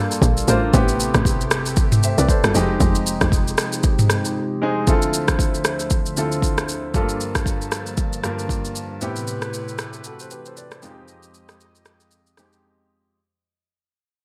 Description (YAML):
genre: amapiano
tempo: 116 BPM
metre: 4/4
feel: swing 58% on 16ths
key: unclear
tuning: A4 = 440 Hz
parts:
  - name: warm baby grand piano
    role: accompaniment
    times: 0.0-13.2 s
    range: F2 to E5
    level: -28 LUFS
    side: equal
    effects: none
  - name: warm analog pad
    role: sustained chords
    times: 0.0-13.1 s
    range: D2 to A5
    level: -30 LUFS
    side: equal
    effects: chorus, sidechain pumping
  - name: afro-pop drum kit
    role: drums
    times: 0.1-12.6 s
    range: kick drum, rim click, shaker, toms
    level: -22 LUFS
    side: equal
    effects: gated reverb
  - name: tight log drum bass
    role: bass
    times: 0.2-3.6 s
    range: F1 to C2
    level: -23 LUFS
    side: equal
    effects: none
room: light reverb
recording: bright 1980s-style digital production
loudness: -20 LUFS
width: mono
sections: 0.0-4.9 A section; 4.9-13.2 B section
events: break 4.4-4.9, 12.6-13.2; fade-out 4.9-13.2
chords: 0.0 Gm7; 0.7 Am7; 2.5 Fm7; 4.9 Dm7; 6.9 Gm7; 9.0 Am7; 10.8 Fm7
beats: 0.22 | 0.74 1.25 1.77 2.29 | 2.81 3.32 3.84 4.36 | 4.87 5.39 5.91 6.43 | 6.94 7.46 7.98 8.49 | 9.01 9.53 10.05 10.56 | 11.08 11.60 12.12 12.63